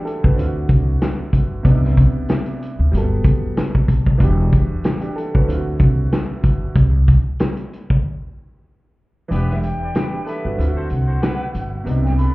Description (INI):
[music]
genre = hip hop, boom-bap hip-hop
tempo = 94 BPM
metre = 4/4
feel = swing 57% on 16ths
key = unclear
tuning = A4 = 444 Hz
[part]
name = warm grand piano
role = accompaniment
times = 0.0-12.3 s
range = C3 to B4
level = -25 LUFS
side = right 2 dB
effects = high-pass filter, low-pass filter
[part]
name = vintage drum kit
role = drums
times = 0.1-12.3 s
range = hi-hat, kick drum, snare drum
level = -17 LUFS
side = equal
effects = none
[part]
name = upright bass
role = bass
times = 0.2-12.3 s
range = E1 to D2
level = -18 LUFS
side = equal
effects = none
[part]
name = clear trumpet section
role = stabs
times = 9.3-12.3 s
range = B3 to D5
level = -34 LUFS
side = left 2 dB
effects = high-pass filter, low-pass filter, analog delay
[part]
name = breathy concert flute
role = melody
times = 9.5-12.3 s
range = E5 to B5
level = -30 LUFS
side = equal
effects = high-pass filter, low-pass filter, analog delay
[part]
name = tambourine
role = percussion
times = 9.6-12.3 s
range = none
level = -61 LUFS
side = right 6 dB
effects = none
[sound]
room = studio ambience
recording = heard muffled through a wall, club reverb, EQ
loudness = -15 LUFS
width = side -20 dB against mid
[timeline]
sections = 0.0-9.3 A section; 9.3-12.3 B section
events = break 8.0-9.3; kick muted 9.3-12.3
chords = 0.4 D9; 1.6 Cmaj9; 2.9 Gmaj9; 4.2 Em9; 5.5 D9; 6.8 N.C.; 9.3 Em7; 10.6 D9